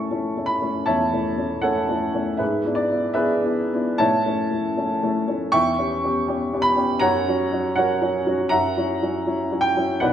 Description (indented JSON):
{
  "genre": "classical, romantic character piece for solo piano",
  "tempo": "79 BPM",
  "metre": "4/4",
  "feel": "rubato",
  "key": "unclear",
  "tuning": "A4 = 440 Hz",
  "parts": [
    { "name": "warm upright piano", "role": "solo", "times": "0.0-10.1 s", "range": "B1 to C#6", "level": "-19 LUFS", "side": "equal", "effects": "none" }
  ],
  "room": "wet recital hall reverb, RT60 1.6 s",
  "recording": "none",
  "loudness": "-19 LUFS",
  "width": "side -10 dB against mid",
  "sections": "0.0-10.1 A section",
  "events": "none",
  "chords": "0.0 A; 2.4 E7/G#; 4.0 A; 5.5 C#m7b5/E; 7.0 F#; 8.5 F#7"
}